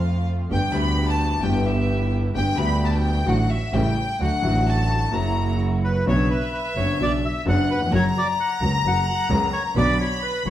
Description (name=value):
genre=tango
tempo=130 BPM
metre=4/4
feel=rubato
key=B harmonic minor from 6.1 s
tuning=A4 = 440 Hz
part: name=rich chamber violin section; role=second line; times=0.0-10.5 s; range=E5 to B5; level=-26 LUFS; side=left 3 dB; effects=none
part: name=warm grand piano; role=accompaniment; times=0.0-10.5 s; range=F#1 to A4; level=-25 LUFS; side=left 2 dB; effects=none
part: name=muted studio string section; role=stabs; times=0.0-6.0 s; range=A3 to G4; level=-31 LUFS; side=right 2 dB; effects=none
part: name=rich double bass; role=bass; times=0.0-10.5 s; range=F#1 to F2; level=-23 LUFS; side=right 1 dB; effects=none
part: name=bandoneon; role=melody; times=5.8-10.5 s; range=B4 to A#5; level=-26 LUFS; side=right 1 dB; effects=none
room=wet large studio reverb, RT60 1.1 s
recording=heard from further back in the room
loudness=-19 LUFS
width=side -12 dB against mid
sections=0.0-6.1 A section; 6.1-10.5 B section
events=violin section solo 0.0-6.1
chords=0.5 G; 1.4 Em/G; 2.3 G; 3.3 D/A; 3.7 A7; 4.2 D; 5.1 F#7; 6.1 Bmadd9; 7.9 F#; 9.8 Bm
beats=0.04 | 0.50 0.96 1.42 1.88 | 2.35 2.81 3.27 3.73 | 4.20 4.66 5.13 5.60 | 6.07 6.53 7.00 7.46 | 7.92 8.38 8.84 9.29 | 9.75 10.21